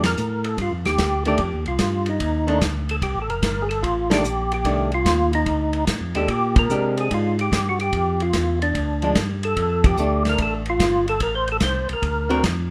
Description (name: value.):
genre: soul jazz organ trio.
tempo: 147 BPM.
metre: 4/4.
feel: swing 67% on 8ths.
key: F mixolydian.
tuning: A4 = 440 Hz.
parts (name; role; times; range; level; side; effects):
percussive tonewheel organ; melody; 0.0-12.4 s; D4 to C5; -25 LUFS; equal; slow rotary speaker, chorus vibrato.
tonewheel organ; bass; 0.0-12.7 s; F1 to C3; -27 LUFS; equal; overdrive, slow rotary speaker.
warm soul drum kit; drums; 0.0-12.6 s; hi-hat, kick drum, ride cymbal, snare drum; -27 LUFS; equal; none.
archtop guitar, miked and amplified; accompaniment; 1.3-12.4 s; D3 to A#4; -26 LUFS; equal; none.
room: moderate large studio reverb, RT60 0.9 s.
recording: none.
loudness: -21 LUFS.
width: mono.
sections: 0.0-12.7 A section.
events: band accent 0.0, 4.0, 6.5, 9.8.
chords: 0.0 F13; 6.3 Bb13; 7.9 Dmadd11; 9.6 F69; 11.2 Am; 12.0 D7alt.